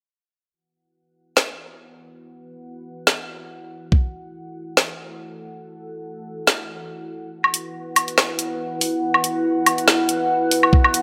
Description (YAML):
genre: deep dubstep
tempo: 141 BPM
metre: 4/4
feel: swing 55% on 16ths, half-time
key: unclear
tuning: A4 = 440 Hz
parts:
  - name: dark analog pad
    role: sustained chords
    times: 1.8-11.0 s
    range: E4 to F#5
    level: -28 LUFS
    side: equal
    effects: chorus, phaser
  - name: deep house drum kit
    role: drums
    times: 1.4-11.0 s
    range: hi-hat, snare drum, woodblock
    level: -20 LUFS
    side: equal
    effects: studio ambience
  - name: electronic kick drum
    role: drums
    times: 3.9-4.0, 10.7-10.8 s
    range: none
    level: -17 LUFS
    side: equal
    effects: overdrive, studio ambience
room: moderate echo chamber reverb, RT60 1.7 s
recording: none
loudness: -20 LUFS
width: mono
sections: 0.5-7.3 A section; 7.3-11.0 B section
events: filter sweep on analog synth pad 0.5-7.3; kick drops out 6.5-7.3; build-up 7.3-11.0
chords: 0.5 E5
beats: | 0.52 0.94 1.37 1.79 | 2.22 2.65 3.07 3.50 | 3.92 4.35 4.77 5.20 | 5.62 6.05 6.47 6.90 | 7.33 7.75 8.18 8.60 | 9.03 9.45 9.88 10.30 | 10.73